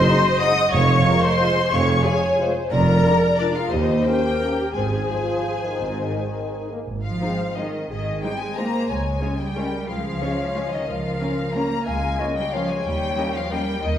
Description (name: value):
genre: classical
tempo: 160-199 BPM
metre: 3/4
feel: rubato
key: Ab major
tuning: A4 = 439 Hz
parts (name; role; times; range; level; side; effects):
- warm symphonic violin section; melody; 0.0-14.0 s; D5 to Eb6; -27 LUFS; left 5 dB; none
- mellow hollow small flute group; second line; 0.0-6.7 s; F4 to Gb5; -26 LUFS; equal; none
- warm symphonic violin section; second line; 0.0-13.6 s; Eb4 to Eb5; -30 LUFS; left 4 dB; none
- warm symphonic viola section; accompaniment; 0.0-13.6 s; Ab3 to Eb5; -26 LUFS; right 1 dB; none
- mellow French horn section; sustained chords; 0.1-13.6 s; Eb3 to F4; -30 LUFS; left 1 dB; none
- dark studio double bass section; bass; 0.7-14.0 s; F1 to Eb2; -26 LUFS; right 2 dB; none
- mellow tuba; bass; 0.7-6.1 s; F1 to Eb2; -28 LUFS; right 2 dB; none
- rich symphonic cello section; bass; 0.7-14.0 s; Eb2 to Bb3; -28 LUFS; right 1 dB; none
- dark clarinet; second line; 7.2-13.9 s; Ab4 to F5; -29 LUFS; left 2 dB; none
room: wet recital hall reverb, RT60 1.5 s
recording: heard from further back in the room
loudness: -19 LUFS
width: side -10 dB against mid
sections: 0.0-6.9 A section; 6.9-14.0 A section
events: none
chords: 0.0 Ab7; 0.7 Db/F; 2.7 Bb7/F; 3.7 Eb7; 4.7 Ab; 8.9 Db; 10.9 Bbm/Db; 12.9 Eb7